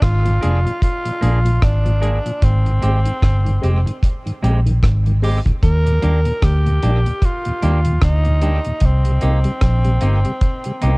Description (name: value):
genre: roots reggae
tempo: 75 BPM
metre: 4/4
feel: swing 58% on 16ths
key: Eb major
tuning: A4 = 441 Hz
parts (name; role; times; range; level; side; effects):
- raspy tenor saxophone; melody; 0.0-11.0 s; C4 to Bb4; -24 LUFS; equal; tape echo
- vintage muted fingered electric bass; bass; 0.0-11.0 s; F1 to Eb2; -15 LUFS; equal; none
- deep reggae drum kit; drums; 0.0-11.0 s; hi-hat, kick drum, rim click; -18 LUFS; equal; cassette tape
- mellow tonewheel organ; accompaniment; 0.2-10.9 s; Eb2 to G4; -25 LUFS; left 1 dB; chorus vibrato, slow rotary speaker, cassette tape
- semi-hollow electric guitar; accompaniment; 0.4-11.0 s; Ab3 to Ab4; -28 LUFS; right 2 dB; cassette tape, tape echo
room: small room ambience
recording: home recording on cassette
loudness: -14 LUFS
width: side -28 dB against mid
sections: 0.0-11.0 A section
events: none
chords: 0.0 Bb7; 2.4 Abmaj7; 5.6 Ebmaj7; 8.8 Cm7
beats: 0.02 0.82 1.62 | 2.42 3.22 4.02 4.82 | 5.62 6.42 7.22 8.03 | 8.83 9.63 10.43